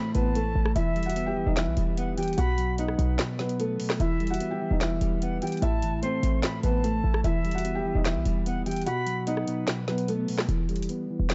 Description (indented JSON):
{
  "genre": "hip hop, trap",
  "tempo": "148 BPM",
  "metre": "4/4",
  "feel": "half-time",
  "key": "E harmonic minor",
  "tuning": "A4 = 441 Hz",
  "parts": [
    { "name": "jazz flute", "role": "second line", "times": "0.0-9.7 s", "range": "E5 to C6", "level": "-38 LUFS", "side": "equal", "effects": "none" },
    { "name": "mellow electric guitar", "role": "accompaniment", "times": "0.0-11.3 s", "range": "A2 to B3", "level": "-33 LUFS", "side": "equal", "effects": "lush chorus, low-pass filter" },
    { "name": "felt-muted upright piano", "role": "melody", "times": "0.1-10.5 s", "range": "A3 to G5", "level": "-33 LUFS", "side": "equal", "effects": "digital delay" },
    { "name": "short 808-style bass", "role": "bass", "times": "0.1-11.3 s", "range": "E1 to B1", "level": "-30 LUFS", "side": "equal", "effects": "none" },
    { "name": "trap drum kit", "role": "drums", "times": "0.1-11.3 s", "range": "handclaps, hi-hat, rim click, snare drum", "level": "-35 LUFS", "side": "equal", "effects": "none" }
  ],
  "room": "little or no reverb",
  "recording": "dark, warm production, nothing above 7.9 kHz",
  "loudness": "-27 LUFS",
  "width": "mono",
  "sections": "0.0-10.5 A section",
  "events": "break 3.2-4.0; kick muted 8.9-10.5",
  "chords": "0.0 A5; 0.8 Emadd9; 2.4 B; 4.0 Emadd9; 5.6 Am; 7.2 Emadd9; 8.9 B; 10.5 Em",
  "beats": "0.35 | 0.76 1.16 1.57 1.97 | 2.38 2.78 3.19 3.60 | 4.00 4.41 4.81 5.22 | 5.62 6.03 6.43 6.84 | 7.24 7.65 8.05 8.46 | 8.87 9.27 9.68 10.08 | 10.49 10.89 11.30"
}